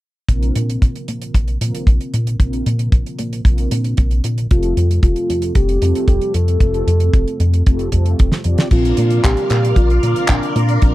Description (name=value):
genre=italo disco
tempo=114 BPM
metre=4/4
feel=straight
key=Bb major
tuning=A4 = 440 Hz
part: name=mellow synth brass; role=stabs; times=0.3-10.9 s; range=C4 to D5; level=-24 LUFS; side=right 1 dB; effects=chorus
part: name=chorused synth bass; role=bass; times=0.3-10.9 s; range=F1 to Bb2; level=-17 LUFS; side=equal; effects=none
part: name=damped 70s drum kit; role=drums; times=0.3-10.9 s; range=crash cymbal, handclaps, hi-hat, snare drum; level=-24 LUFS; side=right 1 dB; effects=none
part: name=kick drum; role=drums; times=0.3-10.9 s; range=none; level=-13 LUFS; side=equal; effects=none
part: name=soft octave-layered synth lead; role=melody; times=4.5-10.9 s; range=D4 to A4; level=-20 LUFS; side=equal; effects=chorus, cassette tape, tape echo
part: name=phased string machine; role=sustained chords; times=8.7-10.9 s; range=Bb4 to C6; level=-24 LUFS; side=equal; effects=ensemble chorus, phaser
room=little or no reverb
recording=dry, close 1970s-style studio recording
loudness=-14 LUFS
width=side -16 dB against mid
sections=0.3-8.7 A section; 8.7-10.9 B section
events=filter sweep on analog synth bass 0.3-8.7; drum fill 8.3-8.7; filter sweep on analog polysynth 8.7-10.9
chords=0.3 Bbadd9; 4.5 Fadd9; 8.7 Bbadd9